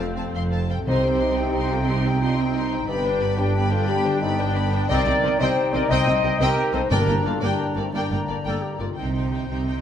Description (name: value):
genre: cinematic, heroic adventure film score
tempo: 118 BPM (dotted quarters)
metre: 6/8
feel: straight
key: C dorian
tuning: A4 = 440 Hz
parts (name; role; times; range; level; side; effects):
- warm symphonic violin section; melody; 0.0-9.8 s; D5 to C6; -32 LUFS; left 3 dB; none
- warm symphonic violin section; second line; 0.0-9.8 s; C4 to F5; -35 LUFS; left 2 dB; none
- rich symphonic viola section; accompaniment; 0.0-9.8 s; Bb3 to Eb4; -32 LUFS; right 1 dB; none
- concert harp; arpeggios; 0.0-9.8 s; F2 to F5; -33 LUFS; left 7 dB; none
- dark trumpet; stabs; 0.0-8.8 s; A3 to C5; -33 LUFS; equal; none
- rich symphonic double bass section; bass; 0.0-9.8 s; F1 to C2; -28 LUFS; right 2 dB; none
- warm symphonic cello section; bass; 0.0-9.8 s; F2 to C3; -27 LUFS; right 3 dB; none
- bright flute section; second line; 0.9-8.8 s; G5 to Bb5; -33 LUFS; equal; none
- mellow clarinet; second line; 0.9-9.0 s; D4 to A4; -32 LUFS; left 2 dB; none
- mellow French horn section; sustained chords; 0.9-8.8 s; C4 to Eb5; -25 LUFS; left 2 dB; none
- timpani; percussion; 0.9-1.3, 6.9-7.4 s; G2 to C3; -28 LUFS; left 1 dB; none
room: wet scoring stage reverb, RT60 1.8 s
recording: none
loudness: -20 LUFS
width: side -9 dB against mid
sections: 0.9-9.0 A section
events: none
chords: 0.0 F; 0.9 Cm; 2.9 G; 4.9 Cm; 6.9 Gm; 9.0 Cm